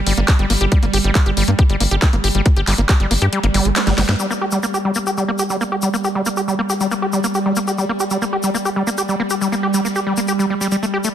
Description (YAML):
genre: psychedelic trance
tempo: 138 BPM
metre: 4/4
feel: straight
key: G minor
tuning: A4 = 441 Hz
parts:
  - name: evolving wavetable pad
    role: sustained chords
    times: 0.0-11.1 s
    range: G3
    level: -23 LUFS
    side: right 2 dB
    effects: phaser, built-in reverb, sidechain pumping
  - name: tight sequencer bass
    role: bass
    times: 0.0-4.2 s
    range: G1 to G2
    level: -18 LUFS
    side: equal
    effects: tube saturation
  - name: overdriven acid bass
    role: riff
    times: 0.1-11.1 s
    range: G3 to G4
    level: -20 LUFS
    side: equal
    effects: distortion, auto-pan, sidechain pumping, tape echo
  - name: drum and bass drum kit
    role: drums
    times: 0.1-4.2 s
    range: handclaps, hi-hat, snare drum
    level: -21 LUFS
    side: equal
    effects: overdrive, low-pass filter on hats, low-pass filter on snare
  - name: electronic kick drum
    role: drums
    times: 0.3-3.0 s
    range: none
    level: -13 LUFS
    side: equal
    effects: overdrive
  - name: tube shaker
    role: percussion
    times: 4.2-11.1 s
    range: none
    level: -27 LUFS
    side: left 4 dB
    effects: none
room: light reverb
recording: dense, heavily limited modern master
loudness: -15 LUFS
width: side -10 dB against mid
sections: 0.0-4.2 A section; 4.2-11.1 B section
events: kick drops out 3.3-4.2; drum fill 3.8-4.2; band accent 4.1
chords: 0.0 G5